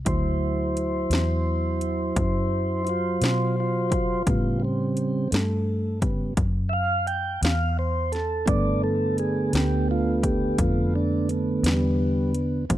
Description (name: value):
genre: slow blues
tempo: 57 BPM (dotted quarters)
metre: 12/8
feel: straight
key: unclear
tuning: A4 = 439 Hz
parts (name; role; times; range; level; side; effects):
- vintage muted fingered electric bass; bass; 0.0-12.8 s; D2 to B2; -26 LUFS; left 1 dB; none
- mellow tonewheel organ; sustained chords; 0.1-12.8 s; C#3 to G5; -24 LUFS; right 1 dB; slow rotary speaker
- house drum kit; drums; 0.1-12.8 s; hi-hat, kick drum, snare drum; -26 LUFS; equal; overdrive
room: digital ambience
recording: dry, close 1970s-style studio recording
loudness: -22 LUFS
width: side -13 dB against mid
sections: 0.0-12.8 A section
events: tonewheel organ solo 0.0-12.8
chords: 0.0 D7; 4.3 A7; 8.5 G7